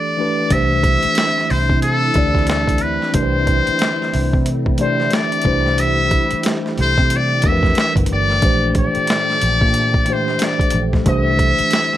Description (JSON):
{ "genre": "R&B, neo-soul", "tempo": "91 BPM", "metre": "4/4", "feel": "swing 60% on 16ths", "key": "C major", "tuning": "A4 = 435 Hz", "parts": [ { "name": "trumpet with metal mute", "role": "melody", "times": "0.0-12.0 s", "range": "A4 to E5", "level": "-18 LUFS", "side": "left 1 dB", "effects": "slapback echo" }, { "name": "mellow tine electric piano", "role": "accompaniment", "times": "0.0-12.0 s", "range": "E3 to D5", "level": "-21 LUFS", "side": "equal", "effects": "medium stereo tremolo" }, { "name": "soft string machine", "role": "sustained chords", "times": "0.5-12.0 s", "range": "Bb2 to G4", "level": "-27 LUFS", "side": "equal", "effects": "phaser, ensemble chorus" }, { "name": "vintage muted fingered electric bass", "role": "bass", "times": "0.5-11.6 s", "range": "G1 to C3", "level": "-20 LUFS", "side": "equal", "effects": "none" }, { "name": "boom bap sampler-style drum kit", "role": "drums", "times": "0.5-12.0 s", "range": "hi-hat, kick drum, snare drum", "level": "-19 LUFS", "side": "equal", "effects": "none" } ], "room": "little or no reverb", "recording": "none", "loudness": "-14 LUFS", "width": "side -13 dB against mid", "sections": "0.5-12.0 A section", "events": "break 0.0-0.5", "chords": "0.0 G69; 0.5 C69; 5.5 Fmaj9/C (rootless); 8.4 Bbmaj7; 11.1 C69" }